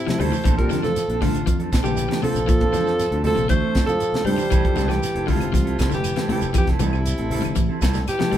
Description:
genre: afrobeat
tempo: 118 BPM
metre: 4/4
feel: straight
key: unclear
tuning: A4 = 440 Hz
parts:
  - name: bright alto saxophone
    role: melody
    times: 0.0-8.4 s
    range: E4 to C5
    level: -25 LUFS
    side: right 1 dB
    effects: none
  - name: warm trombone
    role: second line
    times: 0.0-8.4 s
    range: C3 to A3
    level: -29 LUFS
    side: right 1 dB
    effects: none
  - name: electric guitar at the edge of break-up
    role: arpeggios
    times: 0.1-8.4 s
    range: C3 to G3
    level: -27 LUFS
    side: left 3 dB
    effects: none
  - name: mellow electric guitar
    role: stabs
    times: 0.1-8.4 s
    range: F3 to A4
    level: -29 LUFS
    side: right 5 dB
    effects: harmonic tremolo
  - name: tight funk drum kit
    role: drums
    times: 0.1-8.4 s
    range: hi-hat, kick drum, snare drum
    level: -22 LUFS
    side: equal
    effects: none
  - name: congas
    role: percussion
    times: 0.1-8.4 s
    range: none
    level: -30 LUFS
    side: left 2 dB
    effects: none
  - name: fingered electric bass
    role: bass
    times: 0.2-8.4 s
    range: E1 to Bb2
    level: -26 LUFS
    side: equal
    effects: none
  - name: shekere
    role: percussion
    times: 0.2-8.4 s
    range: none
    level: -34 LUFS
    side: right 6 dB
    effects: none
  - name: claves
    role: percussion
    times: 4.5-8.2 s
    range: none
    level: -42 LUFS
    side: left 7 dB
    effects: none
room: light reverb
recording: band playing live in one room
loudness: -18 LUFS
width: side -11 dB against mid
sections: 0.0-8.4 A section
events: none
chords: 0.5 Bbmaj9; 4.5 Fmaj9

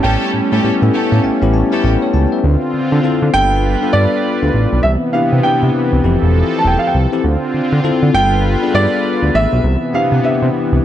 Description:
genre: R&B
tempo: 100 BPM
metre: 4/4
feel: swing 62% on 16ths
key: D dorian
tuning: A4 = 438 Hz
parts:
  - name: warm baby grand piano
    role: melody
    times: 0.0-10.8 s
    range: D5 to A5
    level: -18 LUFS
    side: right 2 dB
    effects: ping-pong delay
  - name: bell-like tine electric piano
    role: accompaniment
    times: 0.0-10.8 s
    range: B3 to A5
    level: -18 LUFS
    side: left 6 dB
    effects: none
  - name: brassy analog pad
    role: sustained chords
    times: 0.0-10.8 s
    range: C3 to B4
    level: -19 LUFS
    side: right 1 dB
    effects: chorus
  - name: rich studio string section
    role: stabs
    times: 0.0-1.9 s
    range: C#4 to A4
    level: -22 LUFS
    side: right 1 dB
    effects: none
  - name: fat analog bass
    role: bass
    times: 0.0-10.8 s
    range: E1 to D3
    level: -14 LUFS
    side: right 1 dB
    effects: none
room: moderate lush hall reverb, RT60 2.3 s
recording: dark, warm production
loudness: -12 LUFS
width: side -11 dB against mid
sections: 0.0-2.4 A section; 2.4-10.8 B section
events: tine electric piano fill 0.6-2.4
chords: 0.0 A7; 2.4 Dm7; 3.3 G7; 4.8 Cmaj7; 6.0 Fmaj7; 7.2 Dm7; 8.1 G7; 9.6 Cmaj7

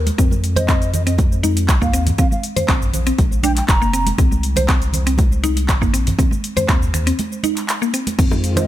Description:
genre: afro house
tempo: 120 BPM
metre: 4/4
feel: straight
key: unclear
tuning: A4 = 441 Hz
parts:
  - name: mallet-like synth pluck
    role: arpeggios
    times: 0.0-8.7 s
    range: Bb3 to C5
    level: -22 LUFS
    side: equal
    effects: chorus, sidechain pumping, tape echo
  - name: warm sub bass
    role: bass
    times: 0.0-8.7 s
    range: F1 to F2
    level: -20 LUFS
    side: equal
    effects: sidechain pumping
  - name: afro-pop drum kit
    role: drums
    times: 0.1-8.7 s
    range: cabasa, crash cymbal, finger snaps, handclaps, hi-hat, toms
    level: -23 LUFS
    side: equal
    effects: small room ambience
  - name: congas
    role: percussion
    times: 0.1-8.7 s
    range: none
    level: -26 LUFS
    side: right 4 dB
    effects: none
  - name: electronic kick drum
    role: drums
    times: 0.2-8.3 s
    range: none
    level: -16 LUFS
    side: equal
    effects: small room ambience
  - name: breathy bass bansuri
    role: melody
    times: 0.6-4.1, 8.6-8.7 s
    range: Eb5 to Bb5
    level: -26 LUFS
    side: equal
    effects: tape echo
  - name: warm analog pad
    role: sustained chords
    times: 8.2-8.7 s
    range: Eb3 to F4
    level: -26 LUFS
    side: left 3 dB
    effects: chorus, sidechain pumping
  - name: bongos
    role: percussion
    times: 8.2-8.7 s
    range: none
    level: -26 LUFS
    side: left 4 dB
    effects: none
room: little or no reverb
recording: none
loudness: -15 LUFS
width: side -13 dB against mid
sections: 0.0-8.7 A section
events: break 7.2-8.2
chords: 0.2 F5; 2.2 Bb5; 4.2 C7(no3); 6.2 Eb5

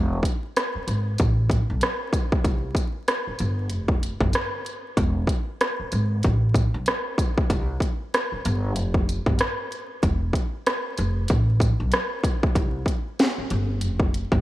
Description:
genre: hip hop, jazz-hop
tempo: 95 BPM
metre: 4/4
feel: swing 59% on 16ths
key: C major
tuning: A4 = 443 Hz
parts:
  - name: upright bass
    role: bass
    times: 0.0-14.4 s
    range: E1 to C2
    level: -24 LUFS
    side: equal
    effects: none
  - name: house drum kit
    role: drums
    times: 0.2-14.4 s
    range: hi-hat, kick drum, rim click, snare drum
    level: -23 LUFS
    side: equal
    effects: overdrive
room: light reverb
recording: vinyl crackle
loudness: -21 LUFS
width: side -16 dB against mid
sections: 0.0-12.6 A section; 12.6-14.4 B section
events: none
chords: none

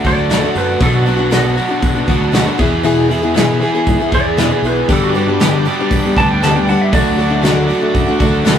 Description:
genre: folk rock and heartland rock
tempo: 118 BPM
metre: 4/4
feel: straight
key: D major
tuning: A4 = 440 Hz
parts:
  - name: picked plugged-in steel-string acoustic guitar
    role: accompaniment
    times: 0.0-8.6 s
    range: E2 to G#4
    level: -16 LUFS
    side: left 3 dB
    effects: none
  - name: overdriven electric guitar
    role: riff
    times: 0.0-8.6 s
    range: E2 to G#4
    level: -18 LUFS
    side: right 2 dB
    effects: none
  - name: fingered electric bass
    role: bass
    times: 0.0-8.6 s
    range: B1 to G3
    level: -20 LUFS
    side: equal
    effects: none
  - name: soft brush drum kit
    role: drums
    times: 0.0-8.6 s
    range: hi-hat, kick drum, snare drum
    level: -17 LUFS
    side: equal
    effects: none
  - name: clean lap steel guitar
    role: second line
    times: 0.1-7.4 s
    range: F#4 to A5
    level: -20 LUFS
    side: right 2 dB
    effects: analog delay
  - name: bright tonewheel organ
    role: sustained chords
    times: 4.9-8.6 s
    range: A4 to D6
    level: -25 LUFS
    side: right 3 dB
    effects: slow rotary speaker, overdrive
room: moderate studio reverb, RT60 0.5 s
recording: rough rehearsal-room recording, lossy compression artefacts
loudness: -11 LUFS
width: side -9 dB against mid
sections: 0.0-8.6 A section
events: electric slide guitar solo 0.0-8.6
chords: 0.0 D; 0.8 Bm; 2.6 E; 4.9 G; 6.9 D

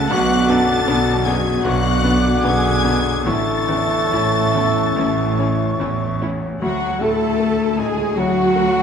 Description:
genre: cinematic, emotional film score for orchestra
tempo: 70-80 BPM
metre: 4/4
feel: rubato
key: unclear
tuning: A4 = 440 Hz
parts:
  - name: rich symphonic violin section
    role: melody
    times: 0.0-8.8 s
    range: A5 to A6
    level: -27 LUFS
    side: left 4 dB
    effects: none
  - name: clear clarinet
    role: second line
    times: 0.0-8.8 s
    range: F#4 to A4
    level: -28 LUFS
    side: left 1 dB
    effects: none
  - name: mellow cor anglais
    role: second line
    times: 0.0-6.2 s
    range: E5 to F#5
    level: -25 LUFS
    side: right 3 dB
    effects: none
  - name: mellow hollow silver concert flute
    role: second line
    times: 0.0-8.8 s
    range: F#5 to D6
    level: -26 LUFS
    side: left 1 dB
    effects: none
  - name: warm symphonic violin section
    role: second line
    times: 0.0-8.8 s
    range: F#5 to A5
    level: -30 LUFS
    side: left 2 dB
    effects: none
  - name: bright grand piano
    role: accompaniment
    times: 0.0-8.8 s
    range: A1 to C#4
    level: -24 LUFS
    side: left 3 dB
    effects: none
  - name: rich symphonic cello section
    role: bass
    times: 0.0-8.8 s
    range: A2 to A3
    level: -24 LUFS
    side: right 4 dB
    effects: none
  - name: warm studio double bass section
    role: bass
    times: 0.0-8.8 s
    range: A1 to D2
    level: -25 LUFS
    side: right 4 dB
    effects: none
  - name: warm symphonic viola section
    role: accompaniment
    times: 0.1-8.8 s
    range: B3 to A4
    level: -25 LUFS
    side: right 1 dB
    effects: none
  - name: warm French horn section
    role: sustained chords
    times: 0.1-8.8 s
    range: D3 to F#4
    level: -23 LUFS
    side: left 5 dB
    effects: none
room: moderate scoring stage reverb, RT60 1.9 s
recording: none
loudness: -15 LUFS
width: side -7 dB against mid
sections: 0.0-6.6 A section; 6.6-8.8 A section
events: none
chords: 0.1 Bm; 3.3 A; 6.6 D

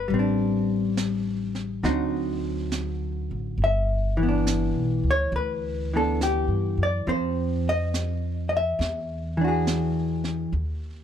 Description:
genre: jazz ballad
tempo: 69 BPM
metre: 4/4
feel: swing 69% on 8ths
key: unclear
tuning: A4 = 436 Hz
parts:
  - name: vintage hollow-body jazz guitar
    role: accompaniment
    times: 0.0-10.6 s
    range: D3 to E5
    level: -25 LUFS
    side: left 1 dB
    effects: none
  - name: upright bass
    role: bass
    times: 0.0-11.0 s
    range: G1 to G2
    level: -28 LUFS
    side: equal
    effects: none
  - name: jazz brush drum kit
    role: drums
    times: 0.1-11.0 s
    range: brushed snare drum, hi-hat, snare drum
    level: -34 LUFS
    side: right 3 dB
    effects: none
room: little or no reverb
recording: close, detailed microphones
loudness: -23 LUFS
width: side -9 dB against mid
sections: 0.0-11.0 A section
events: none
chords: 0.1 Am11; 1.8 D7b9; 3.6 G6; 7.1 F7(no3); 8.8 E9; 10.5 N.C.

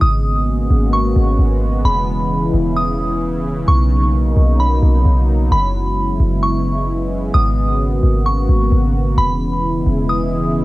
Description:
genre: hip hop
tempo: 131 BPM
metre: 4/4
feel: half-time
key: G# minor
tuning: A4 = 441 Hz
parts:
  - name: glassy synth bell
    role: melody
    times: 0.0-10.6 s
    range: B5 to D#6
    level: -22 LUFS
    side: right 1 dB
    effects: chorus, tremolo, low-pass filter, cassette tape, analog delay
  - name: sweeping resonant pad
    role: sustained chords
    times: 0.0-10.6 s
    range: C#3 to F#4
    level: -20 LUFS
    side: equal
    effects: chorus, cassette tape
  - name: clean 808-style bass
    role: bass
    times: 0.0-10.6 s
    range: E1 to B1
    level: -16 LUFS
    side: equal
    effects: none
room: digital ambience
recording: home recording on cassette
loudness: -14 LUFS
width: side -18 dB against mid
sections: 0.0-10.6 A section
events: none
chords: 0.0 G#m11; 1.9 E6; 3.7 Bmaj9; 5.5 F#9sus4; 7.3 G#m11; 9.2 E6

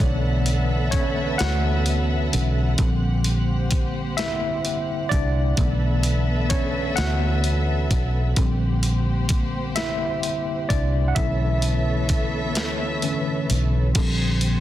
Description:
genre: slow six-eight R&B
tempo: 43 BPM (dotted quarters)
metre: 6/8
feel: straight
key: unclear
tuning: A4 = 438 Hz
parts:
  - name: tine electric piano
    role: accompaniment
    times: 0.0-14.6 s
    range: D3 to F#5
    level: -26 LUFS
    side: left 1 dB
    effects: medium stereo tremolo
  - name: dark studio string section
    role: sustained chords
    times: 0.0-14.6 s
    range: Bb3 to F#5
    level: -30 LUFS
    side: equal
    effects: none
  - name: vintage muted fingered electric bass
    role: bass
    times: 0.0-14.6 s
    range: Bb1 to D2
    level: -23 LUFS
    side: equal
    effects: none
  - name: dusty soul sampler-style drum kit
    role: drums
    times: 0.0-14.6 s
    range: crash cymbal, hi-hat, kick drum, snare drum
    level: -25 LUFS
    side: equal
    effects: none
room: light reverb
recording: dense, heavily limited modern master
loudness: -20 LUFS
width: side -13 dB against mid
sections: 0.0-14.0 A section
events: tine electric piano solo 0.0-14.0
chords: 0.0 Bm11; 2.8 Bb69; 5.6 Bm11; 8.4 Bb69; 11.2 Bm11; 14.0 Bb69

